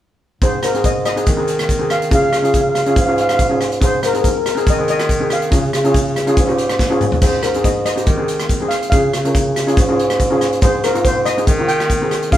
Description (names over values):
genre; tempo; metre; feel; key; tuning
calypso; 141 BPM; 4/4; swing 54% on 16ths; Ab major; A4 = 436 Hz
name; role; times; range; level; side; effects
steel pan; melody; 0.4-12.4 s; Bb4 to G5; -20 LUFS; left 1 dB; none
steel pan; accompaniment; 0.4-12.4 s; C4 to Bb4; -20 LUFS; equal; none
warm bass clarinet; bass; 0.4-12.4 s; Ab2 to Eb3; -19 LUFS; equal; none
modern studio drum kit; drums; 0.4-12.4 s; hi-hat, kick drum, rim click, snare drum, splash cymbal, toms; -18 LUFS; equal; none
tube shaker; percussion; 0.4-12.4 s; none; -31 LUFS; left 2 dB; none
room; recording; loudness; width
moderate large studio reverb, RT60 0.9 s; band playing live in one room; -13 LUFS; side -12 dB against mid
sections
0.4-12.4 A section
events
drum fill 6.8-7.2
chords
0.4 Ab; 2.1 Db; 3.8 Ab; 5.5 Db; 7.2 Ab; 8.9 Db; 10.6 Ab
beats
| 0.41 0.84 1.26 1.69 | 2.11 2.54 2.96 3.39 | 3.81 4.24 4.67 5.09 | 5.52 5.94 6.37 6.79 | 7.22 7.64 8.07 8.49 | 8.92 9.35 9.77 10.20 | 10.62 11.05 11.47 11.90 | 12.32